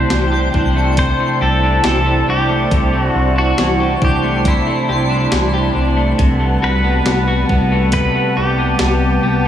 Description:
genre	dream pop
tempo	69 BPM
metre	4/4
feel	straight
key	C lydian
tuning	A4 = 440 Hz
part	pedal steel guitar	melody	0.0-9.5 s	E4 to C5	-20 LUFS	equal	tape echo
part	warm analog pad	sustained chords	0.0-9.5 s	G3 to A5	-20 LUFS	right 1 dB	chorus
part	electric guitar at the edge of break-up	arpeggios	0.0-9.5 s	C3 to G4	-18 LUFS	left 1 dB	analog chorus, tape echo
part	chorused synth bass	bass	0.0-9.5 s	C2	-18 LUFS	equal	none
part	twinkling granular texture	texture	0.2-5.7 s	G5 to C6	-29 LUFS	equal	built-in reverb, tape echo
part	crisp 8-bit digital drum machine	drums	0.1-9.0 s	hi-hat, kick drum, snare drum	-19 LUFS	equal	none
room	moderate concert hall reverb, RT60 2.3 s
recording	studio reverb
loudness	-13 LUFS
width	side -10 dB against mid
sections	0.0-9.5 A section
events	none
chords	0.0 C69; 6.2 Gmaj9/C

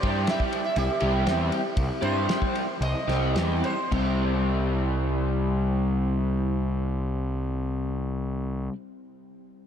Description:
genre	psychedelic rock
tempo	105-123 BPM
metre	4/4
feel	straight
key	C major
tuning	A4 = 440 Hz
part	sitar	melody	0.0-3.9 s	G4 to E5	-31 LUFS	right 2 dB	tape echo
part	crunchy overdriven guitar	riff	0.0-8.8 s	C3 to G4	-28 LUFS	left 1 dB	flanger
part	fuzz picked electric bass	bass	0.0-8.7 s	C2 to G2	-27 LUFS	equal	overdrive
part	cloth-damped thuddy drum kit	drums	0.0-4.1 s	crash cymbal, kick drum, ride cymbal, snare drum	-31 LUFS	equal	none
room	moderate huge ambient reverb, RT60 7.7 s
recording	dreamy mix soaked in reverb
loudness	-24 LUFS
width	side -8 dB against mid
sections	0.0-3.9 A section; 3.9-8.5 B section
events	slowing down 0.0-3.9; sitar solo 0.0-3.9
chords	0.0 C

